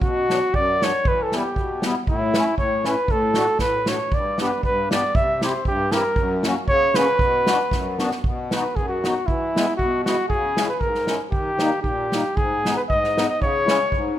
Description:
alpine folk, alpine dance band; 117 BPM; 2/4; rubato; B minor, B major from 8.2 s; A4 = 440 Hz
warm flugelhorn; melody; 0.0-14.2 s; E4 to E5; -21 LUFS; equal
musette accordion; accompaniment; 0.0-14.2 s; F#2 to G4; -25 LUFS; left 2 dB
unplugged drum kit; drums; 0.0-14.0 s; kick drum, snare drum; -25 LUFS; right 1 dB
moderate recital hall reverb, RT60 1.6 s; minimal, uncompressed stereo recording; -19 LUFS; side -12 dB against mid
0.0-8.2 A section; 8.2-14.2 B section
drum fill 7.7-8.2
0.0 Bm; 1.0 Em; 2.1 A; 3.1 D/A; 4.1 G; 5.1 C; 6.2 F#; 7.2 Bm; 8.2 B; 9.3 E; 10.3 C#m; 11.3 D#; 12.4 G#m; 13.4 C#m

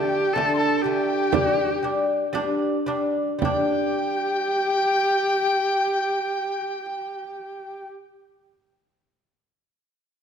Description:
mongolian traditional, Mongolian folk; 54-65 BPM; 4/4; straight; A4 = 440 Hz
clear horsehead fiddle; melody; 0.0-7.9 s; G4 to A4; -26 LUFS; equal
bright reedy large dizi; second line; 0.0-7.9 s; G5 to C6; -26 LUFS; left 1 dB
lute; arpeggios; 0.0-7.9 s; D3 to D4; -24 LUFS; equal
frame drum; percussion; 0.4-3.9 s; -28 LUFS; right 6 dB
moderate scoring stage reverb, RT60 1.4 s; -21 LUFS; side -7 dB against mid
0.0-3.4 A section; 3.4-7.8 B section
slowing down 0.0-3.4
0.0 D5; 1.3 G5

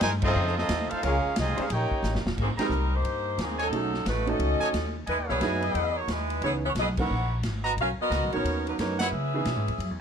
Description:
jazz, big band swing; 178 BPM; 4/4; swing 63% on 8ths; A4 = 440 Hz
brilliant trumpet section; melody; 0.0-2.2 s; C4 to Ab5; -28 LUFS; right 1 dB; plate reverb
muted trombone section; second line; 0.0-2.2 s; C3 to G4; -33 LUFS; right 3 dB
upright bass; bass; 0.0-10.0 s; Eb1 to Db3; -30 LUFS; left 1 dB
swinging big-band drum kit; drums; 0.0-9.9 s; crash cymbal, hi-hat, kick drum, ride cymbal, snare drum; -34 LUFS; equal
clear trombone section; sustained chords; 0.2-1.7 s; Db3 to C5; -34 LUFS; left 3 dB
warm saxophone section; melody; 2.4-10.0 s; Eb3 to Gb5; -29 LUFS; equal; plate reverb
clear baby grand piano; accompaniment; 2.6-9.5 s; Fb3 to Bb4; -32 LUFS; right 5 dB
warm trumpet section; stabs; 2.6-9.1 s; D#4 to Bb5; -30 LUFS; right 2 dB
moderate club reverb, RT60 0.5 s; dark, warm production; -25 LUFS; side -7 dB against mid
0.0-2.4 A section; 2.4-10.0 B section
band accent 0.2, 2.5, 6.9, 9.0; drum fill 2.0-2.4
0.4 F7b13; 1.0 Bbm7; 1.7 Eb7; 2.4 Abmaj9; 3.7 B13; 5.1 Emaj7; 6.4 Dbm7; 7.1 Gb13; 7.8 Bmaj7; 9.1 Dbm7

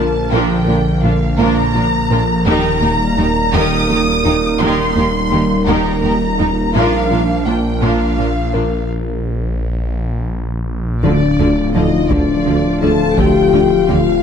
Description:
cinematic, hybrid orchestral and electronic film score; 56 BPM (dotted quarters); 6/8; straight; D phrygian; A4 = 436 Hz
warm symphonic violin section; melody; 0.0-14.0 s; D5 to Eb6; -21 LUFS; left 1 dB
warm symphonic violin section; second line; 0.0-14.2 s; D4 to A5; -23 LUFS; left 2 dB
rich symphonic viola section; accompaniment; 0.0-14.0 s; Eb3 to F4; -24 LUFS; right 2 dB
hollow soft pad; sustained chords; 0.0-14.2 s; D3 to F5; -19 LUFS; right 1 dB; chorus
harp-like synth pluck; arpeggios; 0.0-14.1 s; D3 to Bb4; -22 LUFS; right 1 dB; chorus
phased detuned saw bass; bass; 0.0-14.2 s; D1 to Bb1; -20 LUFS; equal; phaser
warm symphonic cello section; bass; 0.0-14.0 s; Eb2 to D3; -21 LUFS; right 2 dB
dark French horn section; sustained chords; 11.0-14.2 s; D4 to A4; -15 LUFS; left 8 dB
warm symphonic double bass section; bass; 11.0-14.0 s; D2; -22 LUFS; right 2 dB
warm tuba; bass; 11.0-14.0 s; D2; -22 LUFS; right 5 dB
taiko ensemble; drums; 11.0-13.9 s; -22 LUFS; left 1 dB
moderate scoring stage reverb, RT60 2.1 s; -13 LUFS; side -7 dB against mid
0.0-11.0 A section; 11.0-14.2 A section
break 8.9-11.0
0.0 Bb; 2.5 Eb; 6.8 Bb; 11.0 Dm

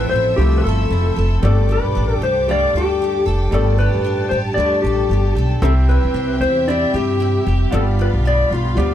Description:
acoustic pop; 114 BPM; 4/4; swing 60% on 16ths; G mixolydian; A4 = 439 Hz
clean lap steel guitar; melody; 0.0-8.9 s; F4 to D5; -19 LUFS; left 2 dB
clear grand piano; accompaniment; 0.0-8.9 s; A3 to F5; -28 LUFS; left 1 dB
picked steel-string acoustic guitar; accompaniment; 0.0-8.9 s; G2 to A4; -22 LUFS; right 1 dB; double-tracked left and right
rich studio string section; sustained chords; 0.0-8.9 s; G4 to E6; -30 LUFS; equal
upright bass; bass; 0.0-8.9 s; F1 to G2; -18 LUFS; equal
little or no reverb; dry, close 1970s-style studio recording; -14 LUFS; side -11 dB against mid
0.0-8.9 A section
0.0 Fmaj7; 1.4 Gsus2; 5.6 C; 7.7 G7

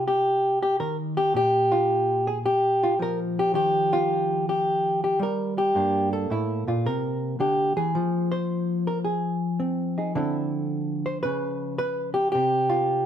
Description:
solo jazz; 109 BPM; 4/4; swing 66% on 8ths; C minor; A4 = 440 Hz
hollow-body jazz guitar; solo; 0.0-13.1 s; G2 to C5; -22 LUFS; equal
moderate stone room reverb, RT60 1.1 s; band playing live in one room; -22 LUFS; side -9 dB against mid
0.0-13.1 A section
0.0 Cm; 1.3 Bb5; 3.5 Ebadd9; 5.7 Gmadd9; 6.8 C7; 7.9 Fm; 10.1 Dm9; 11.2 Db7; 12.3 C5

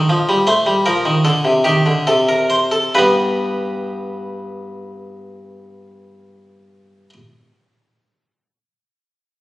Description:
classical, baroque-style two-part invention for harpsichord; 66-82 BPM; 4/4; straight; A4 = 439 Hz
harpsichord; solo; 0.0-7.1 s; G2 to C5; -15 LUFS; equal
wet recital hall reverb, RT60 1.6 s; recorded on a phone in the room, studio reverb; -14 LUFS; side -17 dB against mid
0.0-2.9 A section; 2.9-6.6 B section
slowing down 0.0-2.9
0.0 D7sus4 (rootless); 1.2 D5; 2.9 G

